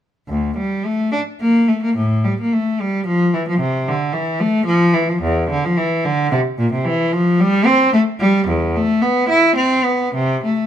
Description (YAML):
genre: classical, baroque-style suite movement for unaccompanied cello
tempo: 111 BPM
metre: 3/4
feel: rubato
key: D minor, A minor from 6.9 s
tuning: A4 = 440 Hz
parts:
  - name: rich cello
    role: solo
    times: 0.3-10.7 s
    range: D2 to E4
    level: -15 LUFS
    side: equal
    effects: none
room: moderate stone room reverb, RT60 1.0 s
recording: minimal, uncompressed stereo recording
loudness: -15 LUFS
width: side -10 dB against mid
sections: 0.3-10.7 A section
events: none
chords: none